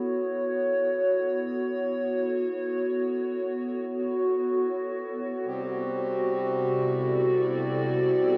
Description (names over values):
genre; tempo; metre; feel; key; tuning
ambient; free time; none; none; unclear; A4 = 440 Hz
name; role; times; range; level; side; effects
warbly tape-like pad; sustained chords; 0.0-8.4 s; C3 to D5; -28 LUFS; equal; chorus, built-in reverb, phaser
pedal harmonium; drone; 5.4-8.4 s; C3 to G3; -33 LUFS; equal; none
room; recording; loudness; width
wet huge ambient reverb, RT60 8.0 s; worn, warbling old tape, cassette tape, warbly pitch drift; -27 LUFS; mono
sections
0.0-8.4 A section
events
none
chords
0.0 A; 5.4 Cmaj7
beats
free time